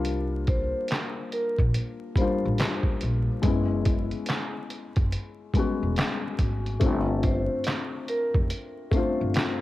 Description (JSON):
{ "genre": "lo-fi hip hop", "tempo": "71 BPM", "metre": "4/4", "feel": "swing 64% on 16ths", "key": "unclear", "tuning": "A4 = 443 Hz", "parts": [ { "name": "felt-muted upright piano", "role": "accompaniment", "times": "0.0-9.6 s", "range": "G3 to F#4", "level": "-29 LUFS", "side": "left 4 dB", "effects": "cassette tape" }, { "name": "upright bass", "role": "bass", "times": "0.0-9.3 s", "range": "E1 to C2", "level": "-28 LUFS", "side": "equal", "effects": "none" }, { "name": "lo-fi sampler-style drum kit", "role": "drums", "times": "0.0-9.6 s", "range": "handclaps, hi-hat, kick drum, snare drum", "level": "-26 LUFS", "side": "equal", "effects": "cassette tape" }, { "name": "vibraphone with medium mallets", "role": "melody", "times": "0.5-9.2 s", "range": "Bb4 to C5", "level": "-31 LUFS", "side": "right 1 dB", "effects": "tape echo" } ], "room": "light reverb, small room reverb", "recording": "home recording on cassette, vinyl crackle", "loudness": "-24 LUFS", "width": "side -16 dB against mid", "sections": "0.0-6.8 A section; 6.8-9.6 A section", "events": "none", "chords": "0.0 C9sus4; 3.4 F#9sus4; 6.8 G9sus4" }